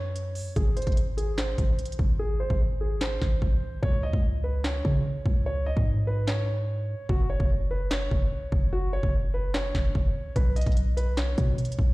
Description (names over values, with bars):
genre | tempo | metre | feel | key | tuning
hip hop, trap | 147 BPM | 4/4 | half-time | unclear | A4 = 440 Hz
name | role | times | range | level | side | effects
dark concert grand piano | melody | 0.0-11.9 s | F#4 to D#5 | -33 LUFS | right 1 dB | low-pass filter, tape echo
warm 808-style bass | bass | 0.0-11.9 s | F#1 to C#3 | -27 LUFS | equal | none
trap drum kit | drums | 0.2-11.9 s | handclaps, hi-hat, kick drum, snare drum | -26 LUFS | equal | none
room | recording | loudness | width
little or no reverb | played on a big sound system in a bare room, large studio reverb | -24 LUFS | side -20 dB against mid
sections
0.0-11.9 A section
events
filter sweep on grand piano 0.0-3.8; hi-hats muted 2.2-3.8, 3.8-10.4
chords
0.0 N.C.; 0.6 G#; 3.8 C#5; 7.1 F#5; 10.4 B5